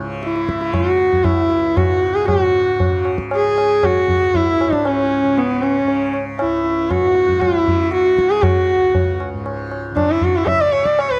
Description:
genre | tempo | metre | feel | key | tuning
indian classical, Hindustani | 117 BPM | 3/4 | straight | C# raga bhairavi | A4 = 440 Hz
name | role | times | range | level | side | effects
tanpura | drone | 0.0-11.2 s | C#2 to C#3 | -30 LUFS | equal | none
rich sarangi | melody | 0.2-11.2 s | B3 to E5 | -18 LUFS | equal | none
tabla | percussion | 0.2-11.2 s | none | -24 LUFS | equal | none
hand-pumped harmonium | second line | 0.4-11.2 s | B3 to E5 | -31 LUFS | equal | none
room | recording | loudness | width
light reverb | dry, close 1970s-style studio recording | -17 LUFS | mono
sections
0.0-2.3 A section; 2.3-11.2 B section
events
none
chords
none

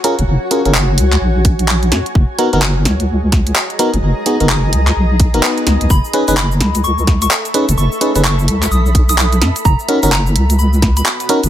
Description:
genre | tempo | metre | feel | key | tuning
UK garage, two-step garage | 128 BPM | 4/4 | swing 62% on 16ths | unclear | A4 = 440 Hz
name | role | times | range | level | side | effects
FM electric piano | stabs | 0.0-11.4 s | B3 to B4 | -16 LUFS | equal | chorus, vintage 12-bit sampler grit, digital delay
garage drum kit | drums | 0.0-11.5 s | cabasa, handclaps, hi-hat, snare drum | -17 LUFS | equal | overdrive
granular cloud pad | texture | 0.0-11.5 s | B3 to B5 | -23 LUFS | equal | built-in reverb, sidechain pumping
deep soft wobble bass | bass | 0.2-11.5 s | F#1 to F#2 | -13 LUFS | equal | chorus
electronic kick drum | drums | 1.4-10.9 s | none | -13 LUFS | equal | none
soft synth bell | melody | 5.9-11.2 s | A#5 to D#6 | -22 LUFS | equal | chorus, phaser, ping-pong delay
room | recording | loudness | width
digital ambience | none | -11 LUFS | side -11 dB against mid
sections
0.0-11.5 A section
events
none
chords
0.0 F#maj9; 2.2 G#m9/F#; 5.9 Amaj9#11/F#; 9.7 Bmaj7/F#

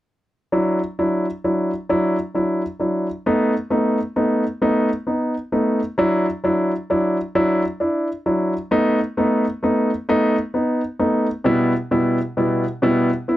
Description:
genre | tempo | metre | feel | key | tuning
pop | 44 BPM (dotted quarters) | 6/8 | straight | D major | A4 = 440 Hz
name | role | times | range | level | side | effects
clear concert grand piano | solo | 0.5-13.4 s | B2 to E4 | -18 LUFS | equal | none
room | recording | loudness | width
light reverb | dry, close 1970s-style studio recording | -18 LUFS | side -14 dB against mid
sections
0.5-6.0 A section; 6.0-13.4 B section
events
none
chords
0.5 Dadd9; 3.3 B7; 6.0 Dadd9; 8.7 B7; 11.5 Em/B

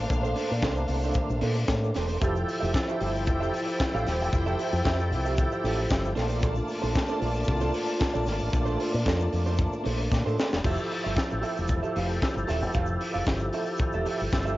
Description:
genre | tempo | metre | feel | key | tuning
disco | 114 BPM | 4/4 | straight | F major | A4 = 441 Hz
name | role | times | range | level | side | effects
clear studio string section | second line | 0.0-10.3 s | D4 to A5 | -34 LUFS | left 1 dB | cassette tape
tonewheel organ | sustained chords | 0.0-14.6 s | F3 to A4 | -32 LUFS | equal | overdrive, chorus vibrato, slow rotary speaker, cassette tape
fingered electric bass with an envelope filter | bass | 0.0-14.5 s | Eb1 to Bb2 | -29 LUFS | equal | none
electric guitar at the edge of break-up | accompaniment | 0.1-14.6 s | D4 to F5 | -33 LUFS | right 5 dB | spring reverb, cassette tape
tight funk drum kit | drums | 0.1-14.5 s | crash cymbal, hi-hat, kick drum, snare drum | -30 LUFS | equal | cassette tape
tube shaker | percussion | 0.1-14.6 s | none | -54 LUFS | left 7 dB | none
room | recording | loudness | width
light reverb | home recording on cassette, nothing above 7.6 kHz | -24 LUFS | side -16 dB against mid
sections
0.0-10.6 A section; 10.6-14.6 B section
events
drum fill 10.1-10.6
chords
0.0 Bbmaj9; 2.2 Fmaj9; 6.2 Bbmaj9; 10.6 Fmaj9

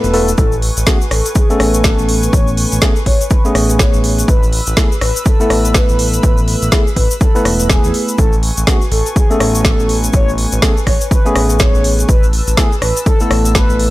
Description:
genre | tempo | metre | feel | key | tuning
deep house | 123 BPM | 4/4 | swing 60% on 16ths | A major | A4 = 440 Hz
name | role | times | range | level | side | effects
mellow horn-like synth lead | melody | 0.0-13.9 s | F#4 to C#5 | -22 LUFS | left 1 dB | chorus, analog delay
hollow soft pad | sustained chords | 0.0-13.9 s | B4 to E6 | -26 LUFS | equal | chorus, sidechain pumping
tine electric piano | stabs | 0.0-13.9 s | A3 to B4 | -18 LUFS | equal | sidechain pumping, analog delay
smooth gliding synth bass | bass | 0.0-13.9 s | E1 to E2 | -16 LUFS | equal | tube saturation, sidechain pumping
deep house drum kit | drums | 0.0-13.9 s | hi-hat, rim click, snare drum | -19 LUFS | equal | none
tube shaker | percussion | 0.0-13.8 s | none | -24 LUFS | left 3 dB | none
electronic kick drum | drums | 0.4-13.7 s | none | -13 LUFS | equal | none
room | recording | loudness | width
little or no reverb | dry, gritty hardware recording | -11 LUFS | side -17 dB against mid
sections
0.0-13.9 A section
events
break 0.0-0.4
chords
0.4 Amaj9; 4.3 Esus4/A; 8.2 Amaj9; 12.1 Esus4/A

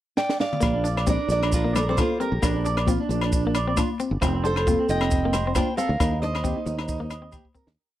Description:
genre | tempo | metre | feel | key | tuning
highlife guitar band | 134 BPM | 4/4 | swing 54% on 16ths | Bb major | A4 = 440 Hz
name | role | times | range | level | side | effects
fingerpicked steel-string acoustic guitar | melody | 0.2-7.5 s | F4 to G5 | -26 LUFS | right 1 dB | none
compact cocktail drum kit | drums | 0.2-7.8 s | hi-hat, kick drum, rim click, snare drum, toms | -27 LUFS | equal | none
electric guitar at the edge of break-up | accompaniment | 0.6-7.7 s | Bb3 to D4 | -30 LUFS | left 4 dB | none
electric guitar through a small old amp | arpeggios | 0.6-7.7 s | Bb3 to Eb5 | -29 LUFS | right 6 dB | tape echo
fingered electric bass | bass | 0.6-7.8 s | F1 to Eb2 | -26 LUFS | equal | none
agogo bells | percussion | 0.6-7.4 s | none | -33 LUFS | left 7 dB | none
congas | percussion | 0.6-7.6 s | none | -32 LUFS | left 6 dB | none
maracas | percussion | 0.6-7.7 s | none | -39 LUFS | right 5 dB | none
room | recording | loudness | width
little or no reverb | dry, close 1970s-style studio recording | -21 LUFS | side -13 dB against mid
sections
0.0-0.6 pickup bar; 0.6-7.8 groove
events
drum fill 0.2-0.6, 7.3-7.8; fade-out 6.0-7.8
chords
0.0 N.C.; 0.6 Bb; 4.2 F; 6.0 Eb

